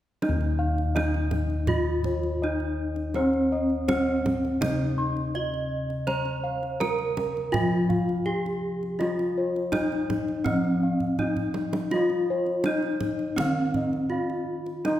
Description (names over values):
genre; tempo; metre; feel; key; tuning
Javanese gamelan; 82 BPM; 4/4; straight; Eb slendro; A4 = 436 Hz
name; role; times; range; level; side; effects
gamelan-type bronze metallophone; melody; 0.2-15.0 s; Db4-45c to Eb5; -27 LUFS; equal; none
gamelan-type bossed gongs; arpeggios; 0.2-15.0 s; Db5-45c to Db6-45c; -32 LUFS; left 1 dB; none
gamelan-type bossed gongs; bass; 0.2-15.0 s; Eb2 to Db5-45c; -28 LUFS; left 1 dB; none
kendang; percussion; 0.2-15.0 s; none; -33 LUFS; right 2 dB; none
room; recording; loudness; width
wet scoring stage reverb, RT60 1.8 s; heard from further back in the room; -24 LUFS; side -12 dB against mid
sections
0.2-15.0 A section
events
drum fill 11.0-11.9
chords
none